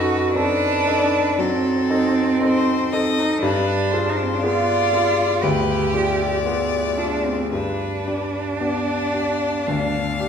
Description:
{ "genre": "classical, slow romantic movement for piano trio", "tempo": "55-60 BPM", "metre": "4/4", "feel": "rubato", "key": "unclear", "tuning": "A4 = 438 Hz", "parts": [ { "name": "clear violin", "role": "melody", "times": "0.0-10.3 s", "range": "A4 to F5", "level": "-26 LUFS", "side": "left 7 dB", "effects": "none" }, { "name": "rich cello", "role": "second line", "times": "0.0-10.3 s", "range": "B3 to G4", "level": "-21 LUFS", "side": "right 3 dB", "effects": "none" }, { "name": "warm concert grand piano", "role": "accompaniment", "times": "0.0-10.3 s", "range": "D2 to A4", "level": "-22 LUFS", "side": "left 2 dB", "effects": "none" } ], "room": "wet recital hall reverb, RT60 1.7 s", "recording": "recorded in a church or concert hall", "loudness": "-18 LUFS", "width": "side -7 dB against mid", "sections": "0.0-10.3 A section", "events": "none", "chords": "0.0 F#dim7; 3.4 G7b9; 7.5 G" }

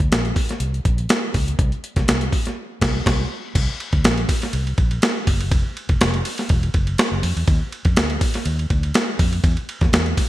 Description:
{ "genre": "polished 1980s jazz-funk pop", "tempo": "122 BPM", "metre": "4/4", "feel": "swing 54% on 16ths", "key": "unclear", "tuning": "A4 = 440 Hz", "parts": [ { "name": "vintage muted fingered electric bass", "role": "bass", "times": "0.0-10.1 s", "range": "E1 to F2", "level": "-22 LUFS", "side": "equal", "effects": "none" }, { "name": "breakbeat sampler-style drum kit", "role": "drums", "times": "0.0-10.3 s", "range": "crash cymbal, hi-hat, kick drum, ride cymbal, snare drum", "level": "-19 LUFS", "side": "equal", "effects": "gated reverb" } ], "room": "light reverb", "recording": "bright 1980s-style digital production", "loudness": "-18 LUFS", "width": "side -15 dB against mid", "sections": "0.0-3.6 A section; 3.6-10.3 A section", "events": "band accent 2.6-3.6", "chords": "none" }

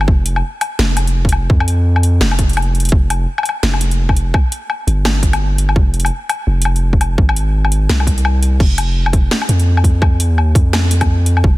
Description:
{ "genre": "half-time drum and bass", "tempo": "169 BPM", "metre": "4/4", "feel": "swing 59% on 16ths, half-time", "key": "F minor", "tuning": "A4 = 440 Hz", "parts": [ { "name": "long sustained 808-style bass", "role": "bass", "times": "0.0-11.6 s", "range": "F1 to F2", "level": "-14 LUFS", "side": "equal", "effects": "none" }, { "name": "drum and bass drum kit", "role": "drums", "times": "0.0-11.4 s", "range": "crash cymbal, hi-hat, snare drum, woodblock", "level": "-19 LUFS", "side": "left 2 dB", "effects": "none" }, { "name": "electronic kick drum", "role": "drums", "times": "0.1-11.5 s", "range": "none", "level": "-13 LUFS", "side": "equal", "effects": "overdrive" } ], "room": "little or no reverb", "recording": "dense, heavily limited modern master", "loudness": "-12 LUFS", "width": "side -18 dB against mid", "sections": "0.0-8.6 A section; 8.6-11.6 A section", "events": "drop 0.0-8.6, 8.6-11.6", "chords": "none" }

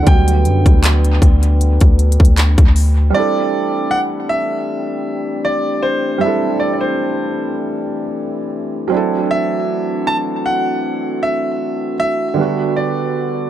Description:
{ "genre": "contemporary R&B", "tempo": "78 BPM", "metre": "4/4", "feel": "swing 54% on 16ths", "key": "unclear", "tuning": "A4 = 443 Hz", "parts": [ { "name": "clear concert grand piano", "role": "melody", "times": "0.0-13.5 s", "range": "C5 to A5", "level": "-20 LUFS", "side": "equal", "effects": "analog delay" }, { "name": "felt-muted upright piano", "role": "accompaniment", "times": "0.0-13.5 s", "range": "D3 to B4", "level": "-21 LUFS", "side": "right 5 dB", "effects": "analog delay" }, { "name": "dark French horn section", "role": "sustained chords", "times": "0.0-13.5 s", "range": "D3 to B4", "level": "-23 LUFS", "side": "left 2 dB", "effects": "none" }, { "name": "long sustained 808-style bass", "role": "bass", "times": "0.0-3.1 s", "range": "D2 to F#2", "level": "-12 LUFS", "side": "equal", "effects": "none" }, { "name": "trap drum kit", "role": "drums", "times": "0.1-3.0 s", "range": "handclaps, hi-hat, kick drum", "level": "-12 LUFS", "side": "equal", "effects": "none" } ], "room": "little or no reverb", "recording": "echo-heavy mix", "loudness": "-14 LUFS", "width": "side -12 dB against mid", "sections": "0.0-3.1 A section; 3.1-13.5 B section", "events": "none", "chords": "0.1 Gmaj7/D; 3.1 C69; 8.9 D9; 12.4 Gmaj7/D" }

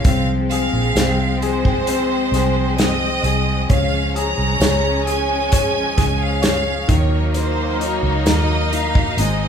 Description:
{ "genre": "pop ballad", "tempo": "66 BPM", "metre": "4/4", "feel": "straight", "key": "unclear", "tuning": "A4 = 439 Hz", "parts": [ { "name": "bright chamber violin section", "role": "melody", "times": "0.0-9.5 s", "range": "C5 to Bb5", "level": "-23 LUFS", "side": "right 3 dB", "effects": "none" }, { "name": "bright upright piano", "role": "accompaniment", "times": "0.0-9.5 s", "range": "Eb3 to Db5", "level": "-23 LUFS", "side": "left 6 dB", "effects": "none" }, { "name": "clear studio string section", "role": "sustained chords", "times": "0.0-9.5 s", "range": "F3 to Eb4", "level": "-24 LUFS", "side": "equal", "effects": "none" }, { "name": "vintage muted fingered electric bass", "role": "bass", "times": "0.0-9.5 s", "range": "Ab1 to Eb2", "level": "-21 LUFS", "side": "right 1 dB", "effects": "none" }, { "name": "loose indie drum kit", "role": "drums", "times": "0.0-9.4 s", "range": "hi-hat, kick drum, snare drum", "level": "-19 LUFS", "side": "equal", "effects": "none" }, { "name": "tambourine", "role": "percussion", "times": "1.0-8.5 s", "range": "none", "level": "-35 LUFS", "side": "right 6 dB", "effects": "none" } ], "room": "moderate large studio reverb, RT60 0.9 s", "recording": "band playing live in one room", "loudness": "-15 LUFS", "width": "side -7 dB against mid", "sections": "0.0-9.5 A section", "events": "none", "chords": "0.0 Fm; 3.7 Db; 6.9 Ebm" }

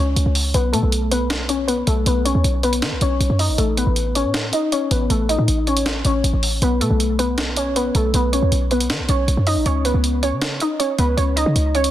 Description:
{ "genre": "hip hop, trap", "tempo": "158 BPM", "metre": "4/4", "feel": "half-time", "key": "unclear", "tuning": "A4 = 440 Hz", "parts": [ { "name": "warbly dusty pluck", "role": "melody", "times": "0.0-11.9 s", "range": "A3 to D#5", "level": "-20 LUFS", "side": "left 1 dB", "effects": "chorus, low-pass filter, tape echo" }, { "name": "short 808-style bass", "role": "bass", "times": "0.0-11.9 s", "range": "A1 to D#3", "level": "-20 LUFS", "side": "equal", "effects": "none" }, { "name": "downlifter", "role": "sound effects", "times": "0.5 s", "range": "none", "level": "barely audible", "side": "none", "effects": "none" }, { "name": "breakbeat sampler-style drum kit", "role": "drums", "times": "0.2-11.9 s", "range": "finger snaps, hi-hat, snare drum", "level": "-24 LUFS", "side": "right 1 dB", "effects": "none" } ], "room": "light reverb, digital ambience", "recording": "dense, heavily limited modern master", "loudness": "-16 LUFS", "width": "side -12 dB against mid", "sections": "0.0-11.9 A section", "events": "filter sweep on synth pluck 0.0-9.7", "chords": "0.0 N.C.; 3.6 A; 6.6 N.C.; 9.7 Badd9/C#" }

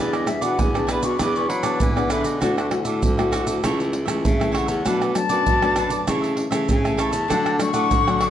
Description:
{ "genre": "samba and choro", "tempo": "98 BPM", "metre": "4/4", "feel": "straight", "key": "A major", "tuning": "A4 = 438 Hz", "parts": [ { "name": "concert flute", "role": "second line", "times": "0.0-8.3 s", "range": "F#4 to D6", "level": "-25 LUFS", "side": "left 4 dB", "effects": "none" }, { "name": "cavaquinho", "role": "accompaniment", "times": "0.0-8.3 s", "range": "D4 to F#5", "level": "-28 LUFS", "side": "right 6 dB", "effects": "none" }, { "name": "nylon-string guitar", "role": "accompaniment", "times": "0.0-8.3 s", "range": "F#2 to G#4", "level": "-27 LUFS", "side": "left 5 dB", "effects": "none" }, { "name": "breathy baritone saxophone", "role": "bass", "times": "0.0-8.3 s", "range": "C#2 to F#3", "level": "-24 LUFS", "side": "equal", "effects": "none" }, { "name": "maracas, pandeiro, tamborim and surdo", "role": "percussion", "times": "0.1-8.3 s", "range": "none", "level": "-24 LUFS", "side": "right 2 dB", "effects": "none" } ], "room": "wet large studio reverb, RT60 1.5 s", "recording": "nothing above 10.4 kHz", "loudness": "-18 LUFS", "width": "side -10 dB against mid", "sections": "0.0-8.3 A section", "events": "flute solo 0.0-8.3", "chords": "0.0 E7; 2.4 Dadd9; 3.6 A/C#; 4.9 Bm7; 6.1 A/C#; 7.3 D" }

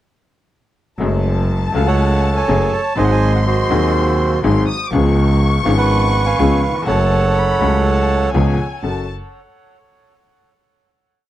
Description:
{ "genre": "tango", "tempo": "123 BPM", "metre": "4/4", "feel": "rubato", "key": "F# harmonic minor", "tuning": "A4 = 440 Hz", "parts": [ { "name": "warm studio violin section", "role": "second line", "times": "1.0-9.1 s", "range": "G#5 to D#6", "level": "-25 LUFS", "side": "left 5 dB", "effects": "none" }, { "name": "bright upright piano", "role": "accompaniment", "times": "1.0-9.0 s", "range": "D#1 to A4", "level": "-20 LUFS", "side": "left 4 dB", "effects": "none" }, { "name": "clear double bass", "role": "bass", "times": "1.0-9.0 s", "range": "F#1 to D#2", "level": "-16 LUFS", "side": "right 1 dB", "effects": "none" }, { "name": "bandoneon", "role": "melody", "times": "1.8-8.3 s", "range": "F#4 to A5", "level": "-19 LUFS", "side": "right 4 dB", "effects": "tape echo" } ], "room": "little or no reverb", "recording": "dry, close 1970s-style studio recording", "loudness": "-13 LUFS", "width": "side -13 dB against mid", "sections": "1.0-8.8 A section; 8.8-10.8 final chord", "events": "none", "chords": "1.0 F#madd9; 3.0 G#7; 4.9 C#7; 6.9 F#m; 8.3 C#7; 8.8 F#m" }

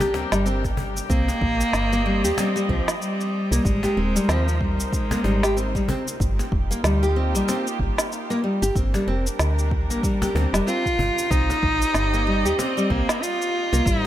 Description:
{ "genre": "organic downtempo", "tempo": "94 BPM", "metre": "4/4", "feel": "swing 58% on 16ths", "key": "C minor", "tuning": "A4 = 440 Hz", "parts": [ { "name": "dark studio string section", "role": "sustained chords", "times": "0.0-14.1 s", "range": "G3 to Eb5", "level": "-31 LUFS", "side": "equal", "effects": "sidechain pumping" }, { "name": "nylon-string guitar", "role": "arpeggios", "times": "0.0-14.0 s", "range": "G3 to G4", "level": "-26 LUFS", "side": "left 1 dB", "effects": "tape echo" }, { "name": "woody FM bass", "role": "bass", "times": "0.0-14.1 s", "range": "Eb1 to Eb2", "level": "-24 LUFS", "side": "equal", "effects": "none" }, { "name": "electronic cabasa and snare drum", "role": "drums", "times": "0.0-14.0 s", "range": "none", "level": "-28 LUFS", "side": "equal", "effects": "none" }, { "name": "cajon", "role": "percussion", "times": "0.0-12.7 s", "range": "none", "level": "-31 LUFS", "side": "left 2 dB", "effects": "none" }, { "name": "electronic kick drum", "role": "drums", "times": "0.6-14.0 s", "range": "none", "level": "-26 LUFS", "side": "equal", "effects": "none" }, { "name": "rich cello", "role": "melody", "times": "1.1-5.8, 10.7-14.1 s", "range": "F3 to F4", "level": "-24 LUFS", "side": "equal", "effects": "tape echo" } ], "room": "light reverb", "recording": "none", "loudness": "-20 LUFS", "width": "side -12 dB against mid", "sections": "0.0-14.1 A section", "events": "none", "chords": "0.0 Gm; 1.1 Cm7; 3.6 Abmaj9; 6.2 Eb69; 8.8 Gm7; 11.3 Cm7" }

